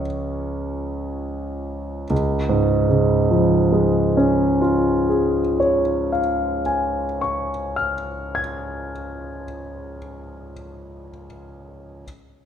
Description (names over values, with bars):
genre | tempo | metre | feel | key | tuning
classical, romantic nocturne for solo piano | 28-33 BPM (dotted quarters) | 12/8 | rubato | Db major | A4 = 440 Hz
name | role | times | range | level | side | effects
warm concert grand piano | solo | 0.0-12.1 s | Db2 to Ab6 | -20 LUFS | equal | none
room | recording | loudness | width
moderate recital hall reverb, RT60 1.6 s | none | -18 LUFS | side -8 dB against mid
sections
0.0-2.1 A section; 2.1-9.8 B section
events
slowing down 0.0-2.1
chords
0.0 Db